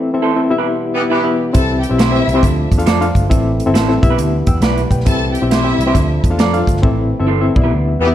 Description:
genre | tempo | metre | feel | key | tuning
uptempo 1960s-style soul | 136 BPM | 4/4 | swing 64% on 8ths | unclear | A4 = 438 Hz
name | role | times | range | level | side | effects
barky reed electric piano | accompaniment | 0.0-8.1 s | B3 to E6 | -17 LUFS | left 3 dB | overdrive, medium tremolo
percussive tonewheel organ | sustained chords | 0.0-8.1 s | B2 to F4 | -25 LUFS | right 1 dB | overdrive, stopped rotary speaker
electric guitar through a small old amp | stabs | 0.2-7.7 s | E4 to D5 | -22 LUFS | right 6 dB | tape echo
warm horn section | second line | 0.9-1.4, 8.0-8.1 s | E3 to G4 | -17 LUFS | left 2 dB | none
warm studio violin section | second line | 1.5-6.2 s | E4 to A5 | -23 LUFS | left 1 dB | none
swinging big-band drum kit | drums | 1.5-7.6 s | hi-hat, kick drum, snare drum | -16 LUFS | equal | none
vintage muted picked electric bass | bass | 1.6-8.1 s | G1 to F2 | -17 LUFS | equal | none
room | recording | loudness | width
light reverb | dark, warm production | -12 LUFS | side -12 dB against mid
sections
0.0-8.1 A section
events
band accent 0.0-1.5, 6.8-8.1; drum fill 6.8-8.1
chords
0.4 Em/B; 1.5 C; 2.4 Dm; 3.3 Am; 4.0 Em/B; 5.1 C; 6.0 Dm; 6.8 Am; 7.5 Em/B

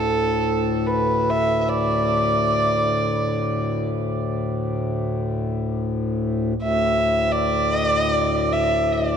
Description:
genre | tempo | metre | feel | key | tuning
world meditative, free-time meditation music | free time | none | none | unclear | A4 = 440 Hz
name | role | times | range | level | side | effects
warm violin | melody | 0.0-9.2 s | A4 to E5 | -21 LUFS | right 2 dB | tape echo
pedal harmonium | drone | 0.0-9.2 s | D2 to A2 | -23 LUFS | left 2 dB | none
room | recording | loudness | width
wet cathedral reverb, RT60 4.8 s | dark, warm production | -19 LUFS | side -7 dB against mid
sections
0.0-9.2 A section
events
none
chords
none

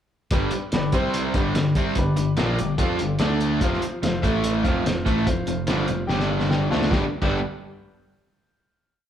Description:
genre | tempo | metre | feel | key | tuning
classic rock | 145 BPM | 4/4 | straight | G mixolydian | A4 = 441 Hz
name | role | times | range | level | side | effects
warm upright piano | accompaniment | 0.3-7.4 s | C4 to A5 | -30 LUFS | left 2 dB | none
crunchy overdriven guitar | riff | 0.3-7.4 s | F2 to G4 | -26 LUFS | left 5 dB | none
crunchy overdriven guitar | riff | 0.3-7.4 s | F2 to F4 | -26 LUFS | right 6 dB | none
modern bright picked electric bass | bass | 0.3-7.4 s | F1 to F2 | -29 LUFS | equal | none
cloth-damped thuddy drum kit | drums | 0.3-7.3 s | crash cymbal, hi-hat, kick drum, snare drum | -25 LUFS | equal | none
room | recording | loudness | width
moderate large studio reverb, RT60 1.2 s | band playing live in one room | -20 LUFS | side -10 dB against mid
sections
0.3-6.9 riff; 6.9-8.5 final chord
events
drum fill 6.1-6.9; upright piano fill 6.1-6.9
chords
0.3 G; 0.9 C5; 1.3 G; 3.2 D5; 3.6 F5; 4.2 A5; 4.7 F5; 6.1 G5; 6.7 F5; 6.9 G

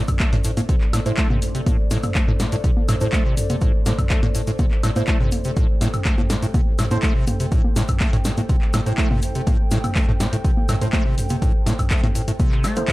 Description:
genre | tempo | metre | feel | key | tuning
acid house | 123 BPM | 4/4 | straight | A minor pentatonic | A4 = 440 Hz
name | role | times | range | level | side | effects
dark analog pad | sustained chords | 0.0-12.9 s | A3 to G5 | -31 LUFS | left 1 dB | chorus, sidechain pumping
liquid acid bass | riff | 0.0-12.9 s | A2 to A3 | -24 LUFS | equal | chorus, vintage 12-bit sampler grit, analog delay
electronic kick drum | drums | 0.1-12.9 s | none | -20 LUFS | equal | none
punchy analog drum machine | drums | 0.1-12.9 s | congas, handclaps, hi-hat, snare drum, toms, woodblock | -25 LUFS | equal | none
tube shaker | percussion | 0.1-12.9 s | none | -38 LUFS | left 3 dB | none
deep mellow chord stab | stabs | 1.1-12.9 s | A3 to C5 | -31 LUFS | right 2 dB | wide subtle chorus, analog delay
room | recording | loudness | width
light reverb | dark, warm production | -17 LUFS | side -18 dB against mid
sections
0.0-12.9 A section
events
none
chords
0.0 Am

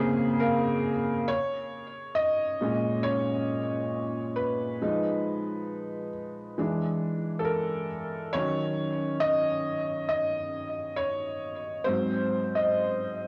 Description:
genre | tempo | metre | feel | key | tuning
hip hop | 68 BPM | 4/4 | swing 58% on 16ths | Bb minor | A4 = 440 Hz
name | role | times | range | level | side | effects
felt-muted upright piano | solo | 0.0-13.3 s | Ab2 to Bb5 | -29 LUFS | equal | cassette tape, low-pass filter, tape echo
room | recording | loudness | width
light reverb, small room reverb | dry, gritty hardware recording, transformer saturation, small room ambience | -29 LUFS | mono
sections
0.0-1.3 A section; 1.3-13.3 B section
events
felt piano fill 0.0-1.3; felt piano solo 1.3-13.3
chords
0.0 Bbm9; 1.3 Bbm7; 4.8 Fm7b5; 6.6 E7; 8.4 Ebm7; 11.9 Ab7

